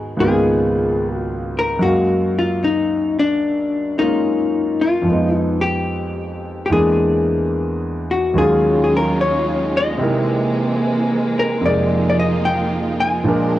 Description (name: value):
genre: jazz ballad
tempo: 74 BPM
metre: 4/4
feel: swing 68% on 8ths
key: unclear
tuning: A4 = 440 Hz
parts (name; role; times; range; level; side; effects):
- vintage hollow-body jazz guitar; melody; 0.0-13.6 s; D4 to Ab5; -19 LUFS; left 3 dB; cassette tape
- clear concert grand piano; accompaniment; 0.0-13.6 s; Db2 to F5; -19 LUFS; right 1 dB; cassette tape
- warm symphonic string section; sustained chords; 8.4-13.6 s; E3 to Bb4; -20 LUFS; right 2 dB; cassette tape
room: light reverb, small room ambience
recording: home recording on cassette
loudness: -16 LUFS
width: side -14 dB against mid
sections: 0.0-13.6 A section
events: none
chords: 0.2 Db13; 1.8 Gbmaj9; 5.0 Fm7b5; 6.7 E7#11; 8.4 Ebm11; 10.0 C7alt; 11.6 Fm7